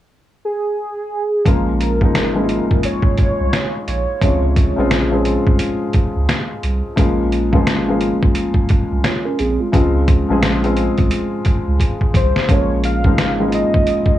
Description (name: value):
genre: lo-fi hip hop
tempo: 87 BPM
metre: 4/4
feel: swing 62% on 16ths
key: unclear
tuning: A4 = 441 Hz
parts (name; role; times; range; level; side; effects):
- warm velvety synth lead; melody; 0.4-5.2, 12.2-14.2 s; Ab4 to F5; -22 LUFS; right 1 dB; chorus, low-pass filter, analog delay
- felt-muted upright piano; accompaniment; 1.4-14.2 s; C3 to Ab4; -19 LUFS; left 2 dB; cassette tape, low-pass filter
- warm sub bass; bass; 1.5-13.9 s; Ab1 to Db2; -21 LUFS; right 1 dB; none
- trip hop sampler-style drum kit; drums; 1.5-14.2 s; hi-hat, kick drum, snare drum; -17 LUFS; equal; vintage 12-bit sampler grit
- mellow tine electric piano; second line; 9.0-9.9 s; Ab3 to Db5; -22 LUFS; right 4 dB; medium stereo tremolo, low-pass filter, analog delay
room: light reverb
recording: cassette tape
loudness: -14 LUFS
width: side -13 dB against mid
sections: 0.0-1.5 A section; 1.5-14.2 B section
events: drum fill 11.8-12.5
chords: 0.0 N.C.; 1.5 Bbm7; 4.2 Dbmaj7; 7.0 Bbm7; 9.7 Dbmaj7; 12.5 Bbm7